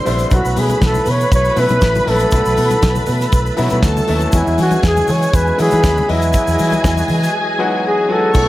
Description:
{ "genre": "disco", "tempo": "120 BPM", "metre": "4/4", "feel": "straight", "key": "E major", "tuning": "A4 = 440 Hz", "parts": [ { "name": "dark studio string section", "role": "second line", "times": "0.0-8.5 s", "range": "G#4 to C#6", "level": "-21 LUFS", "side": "equal", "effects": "none" }, { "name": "clear grand piano", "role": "accompaniment", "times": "0.0-8.5 s", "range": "F#3 to D#5", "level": "-22 LUFS", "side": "left 2 dB", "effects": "none" }, { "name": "tonewheel organ", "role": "sustained chords", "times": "0.0-8.5 s", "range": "C3 to D#5", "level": "-25 LUFS", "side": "right 1 dB", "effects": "overdrive, chorus vibrato, slow rotary speaker" }, { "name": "fingered electric bass", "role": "bass", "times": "0.1-8.5 s", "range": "A1 to E3", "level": "-18 LUFS", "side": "equal", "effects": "none" }, { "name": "damped 70s drum kit", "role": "drums", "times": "0.1-8.5 s", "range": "crash cymbal, hi-hat, kick drum, snare drum", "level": "-18 LUFS", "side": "equal", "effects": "none" }, { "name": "congas", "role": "percussion", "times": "0.1-7.2 s", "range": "none", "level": "-26 LUFS", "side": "left 3 dB", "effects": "none" }, { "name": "egg shaker", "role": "percussion", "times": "0.1-8.5 s", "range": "none", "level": "-33 LUFS", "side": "right 2 dB", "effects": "none" }, { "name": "breathy flugelhorn", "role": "melody", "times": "0.3-8.5 s", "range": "E4 to C#5", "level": "-17 LUFS", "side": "equal", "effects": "none" } ], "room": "light reverb, studio reverb", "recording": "none", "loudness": "-12 LUFS", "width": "side -16 dB against mid", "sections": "0.0-8.3 A section", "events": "flugelhorn solo 0.0-8.3", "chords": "0.3 B7sus4; 4.3 E69; 6.1 Emaj9" }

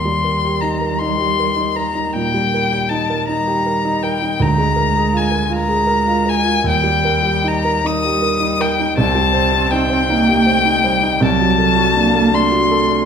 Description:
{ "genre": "classical, slow romantic movement for piano trio", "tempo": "53 BPM (dotted quarters)", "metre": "12/8", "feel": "rubato", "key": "unclear", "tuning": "A4 = 440 Hz", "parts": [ { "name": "muted violin", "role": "melody", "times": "0.0-13.1 s", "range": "G5 to Eb6", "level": "-17 LUFS", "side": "left 5 dB", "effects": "none" }, { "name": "muted cello", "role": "second line", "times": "0.0-13.1 s", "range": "F#3 to C4", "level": "-21 LUFS", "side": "right 4 dB", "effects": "none" }, { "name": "dark concert grand piano", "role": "accompaniment", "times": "0.0-13.1 s", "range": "C2 to C5", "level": "-18 LUFS", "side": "right 2 dB", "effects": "none" } ], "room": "wet recital hall reverb, RT60 1.5 s", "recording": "minimal, uncompressed stereo recording", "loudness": "-14 LUFS", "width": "side -7 dB against mid", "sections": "0.0-13.1 A section", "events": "none", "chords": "0.0 Eb; 4.4 Bb7/D; 6.7 Eb; 9.0 Cm; 11.2 D7/C" }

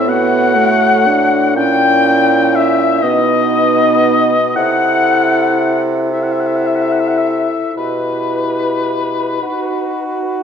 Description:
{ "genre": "classical, slow romantic movement for wind quintet", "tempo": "36-41 BPM (dotted quarters)", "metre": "6/8", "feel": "rubato", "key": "unclear", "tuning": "A4 = 442 Hz", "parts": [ { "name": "silver concert flute", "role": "melody", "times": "0.0-10.4 s", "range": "B4 to G5", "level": "-20 LUFS", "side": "left 8 dB", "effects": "none" }, { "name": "warm oboe", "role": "second line", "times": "0.0-10.4 s", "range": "B4 to G5", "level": "-16 LUFS", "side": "left 3 dB", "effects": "none" }, { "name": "warm French horn", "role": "accompaniment", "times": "0.0-10.4 s", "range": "A3 to E4", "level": "-18 LUFS", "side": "left 1 dB", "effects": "none" }, { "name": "warm clarinet", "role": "accompaniment", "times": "0.0-10.4 s", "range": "D#4 to A4", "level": "-21 LUFS", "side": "right 8 dB", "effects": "none" }, { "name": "clear bassoon", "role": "bass", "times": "0.0-10.4 s", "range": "A2 to F#4", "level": "-18 LUFS", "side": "right 2 dB", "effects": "none" } ], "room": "moderate concert hall reverb, RT60 2.1 s", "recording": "dark, warm production", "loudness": "-12 LUFS", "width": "side -7 dB against mid", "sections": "0.0-10.4 A section", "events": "none", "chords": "0.0 F#m/A; 1.6 A#dim7; 3.0 B; 4.6 Am/C; 7.8 Em/B; 9.4 B/D#" }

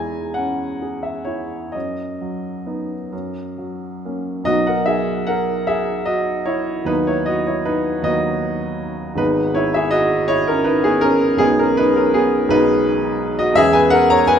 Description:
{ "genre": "classical, romantic nocturne for solo piano", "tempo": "42-58 BPM (dotted quarters)", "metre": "12/8", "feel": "rubato", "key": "B major", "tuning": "A4 = 438 Hz", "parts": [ { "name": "warm baby grand piano", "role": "solo", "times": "0.0-14.4 s", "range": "G#1 to B5", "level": "-16 LUFS", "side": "equal", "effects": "none" } ], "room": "wet recital hall reverb, RT60 1.6 s", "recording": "minimal, uncompressed stereo recording", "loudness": "-16 LUFS", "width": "side -8 dB against mid", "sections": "0.0-4.5 A section; 4.5-14.4 B section", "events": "none", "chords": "0.0 C#m/E; 1.7 B/F#; 3.1 F#; 4.5 B; 6.9 B/D#; 9.2 G#m; 11.4 G#m/B; 13.6 C#m7/E" }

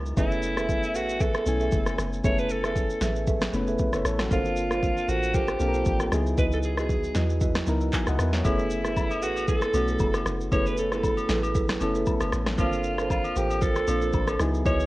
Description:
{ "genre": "amapiano", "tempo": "116 BPM", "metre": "4/4", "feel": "swing 55% on 16ths", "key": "F# minor", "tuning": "A4 = 440 Hz", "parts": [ { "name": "soft electric-piano-like synth keys", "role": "accompaniment", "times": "0.0-14.9 s", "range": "F#3 to G#5", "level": "-30 LUFS", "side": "left 1 dB", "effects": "chorus" }, { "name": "deep house drum kit", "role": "drums", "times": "0.1-14.9 s", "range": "handclaps, kick drum, rim click, shaker, snare drum", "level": "-28 LUFS", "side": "equal", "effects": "none" }, { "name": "raspy alto saxophone", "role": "melody", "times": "0.2-14.9 s", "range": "E4 to C#5", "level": "-29 LUFS", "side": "equal", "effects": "digital delay" }, { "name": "marimba with medium mallets", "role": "stabs", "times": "0.2-14.8 s", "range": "E4 to E5", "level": "-31 LUFS", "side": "right 3 dB", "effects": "digital delay" }, { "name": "deep log drum bass", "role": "bass", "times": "0.2-14.9 s", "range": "F#1 to E2", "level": "-29 LUFS", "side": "equal", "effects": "none" }, { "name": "agogo bells and woodblock", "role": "percussion", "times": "8.4-14.8 s", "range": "none", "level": "-35 LUFS", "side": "left 3 dB", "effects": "none" } ], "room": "light reverb", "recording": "worn, warbling old tape, cassette tape, warbly pitch drift", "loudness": "-23 LUFS", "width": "side -18 dB against mid", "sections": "0.2-14.9 A section", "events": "none", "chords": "0.2 F#m11; 4.3 Gm11; 6.1 C#m11; 8.4 F#m11; 12.6 Gm11" }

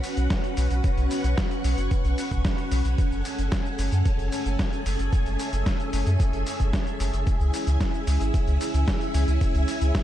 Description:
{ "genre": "italo disco", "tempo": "112 BPM", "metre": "4/4", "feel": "straight", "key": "unclear", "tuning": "A4 = 440 Hz", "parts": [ { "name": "string machine, full ensemble", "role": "sustained chords", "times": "0.0-10.0 s", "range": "C#4 to C#6", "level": "-29 LUFS", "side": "equal", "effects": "ensemble chorus, vintage 12-bit sampler grit" }, { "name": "dusty soul sampler-style drum kit", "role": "drums", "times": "0.0-10.0 s", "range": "cabasa, hi-hat, snare drum", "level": "-33 LUFS", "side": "equal", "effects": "overdrive" }, { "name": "round analog bass", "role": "bass", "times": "0.2-9.9 s", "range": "F#1 to F#2", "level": "-24 LUFS", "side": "equal", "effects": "none" }, { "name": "electronic kick drum", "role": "drums", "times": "0.3-10.0 s", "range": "none", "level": "-25 LUFS", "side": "equal", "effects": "overdrive" } ], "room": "digital ambience", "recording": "dark, warm production", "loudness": "-22 LUFS", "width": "side -12 dB against mid", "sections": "0.0-10.0 A section", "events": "none", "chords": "0.0 Bsus2; 3.0 F#madd9; 7.3 C#m" }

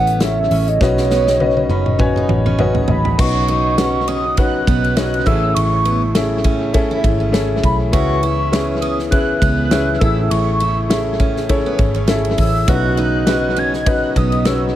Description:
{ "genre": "piano-driven pop", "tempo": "101 BPM", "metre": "4/4", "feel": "swing 56% on 16ths", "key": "unclear", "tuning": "A4 = 440 Hz", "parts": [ { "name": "warm velvety synth lead", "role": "melody", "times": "0.0-14.8 s", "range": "C#5 to G#6", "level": "-20 LUFS", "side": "right 1 dB", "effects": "chorus" }, { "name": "clear upright piano", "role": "accompaniment", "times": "0.0-14.8 s", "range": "A2 to B5", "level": "-19 LUFS", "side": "left 2 dB", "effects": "tape echo" }, { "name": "pipe organ, foundations", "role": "sustained chords", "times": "0.0-14.7 s", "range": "C#3 to E4", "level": "-28 LUFS", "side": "right 3 dB", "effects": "none" }, { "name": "picked steel-string acoustic guitar", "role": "riff", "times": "0.0-14.6 s", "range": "B3 to F#4", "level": "-25 LUFS", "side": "right 5 dB", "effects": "none" }, { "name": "vintage muted picked electric bass", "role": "bass", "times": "0.0-14.7 s", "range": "F#1 to C#2", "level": "-20 LUFS", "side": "equal", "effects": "none" }, { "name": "natural country drum kit", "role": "drums", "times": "0.1-14.6 s", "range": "crash cymbal, hi-hat, kick drum, ride cymbal, snare drum, toms", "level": "-19 LUFS", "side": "equal", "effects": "tape echo" } ], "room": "light reverb, studio ambience", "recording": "echo-heavy mix", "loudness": "-14 LUFS", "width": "side -12 dB against mid", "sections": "0.0-3.2 A section; 3.2-14.8 B section", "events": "drum fill 0.8-3.2; upright piano fill 1.4-3.2", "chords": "0.0 A; 0.8 Badd9; 5.3 Amaj7; 7.9 C#m7; 10.0 Amaj7; 12.7 Badd9" }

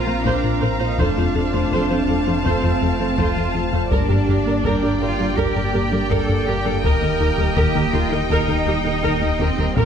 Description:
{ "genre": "cinematic, hybrid orchestral and electronic film score", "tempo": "82 BPM", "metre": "4/4", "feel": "straight", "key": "unclear", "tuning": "A4 = 438 Hz", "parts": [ { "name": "rich studio violin section", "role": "second line", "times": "0.0-9.9 s", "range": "C5 to Bb5", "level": "-26 LUFS", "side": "left 2 dB", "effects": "none" }, { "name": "brassy analog pad", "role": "sustained chords", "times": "0.0-9.9 s", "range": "A3 to C5", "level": "-27 LUFS", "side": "equal", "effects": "chorus" }, { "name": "rich studio cello section", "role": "bass", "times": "0.0-9.9 s", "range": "Bb3 to Bb4", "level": "-24 LUFS", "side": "right 2 dB", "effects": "none" }, { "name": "sub bass with octave", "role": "bass", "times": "0.0-9.9 s", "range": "Eb1 to Bb1", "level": "-28 LUFS", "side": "equal", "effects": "none" }, { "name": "dark symphonic viola section", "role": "accompaniment", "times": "0.1-9.9 s", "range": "G4 to C5", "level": "-26 LUFS", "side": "right 2 dB", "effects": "none" }, { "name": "thumb-piano-like synth pluck", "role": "arpeggios", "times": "0.1-9.9 s", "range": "Eb3 to C5", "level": "-28 LUFS", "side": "right 5 dB", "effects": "chorus, ping-pong delay" }, { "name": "plucky analog bass", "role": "riff", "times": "0.1-9.9 s", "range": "Eb2 to Bb3", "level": "-23 LUFS", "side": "left 3 dB", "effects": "none" }, { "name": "warm symphonic double bass section", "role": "bass", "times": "0.1-9.8 s", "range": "Bb1 to G2", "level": "-29 LUFS", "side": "right 4 dB", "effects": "none" }, { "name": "taiko ensemble", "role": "drums", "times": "0.2-9.9 s", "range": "none", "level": "-27 LUFS", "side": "left 1 dB", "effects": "none" } ], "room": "moderate scoring stage reverb, RT60 1.6 s", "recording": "none", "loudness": "-17 LUFS", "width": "side -8 dB against mid", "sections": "0.0-9.9 A section", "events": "none", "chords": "0.0 Bbsus2; 1.0 F; 3.9 Gm; 6.8 Eb" }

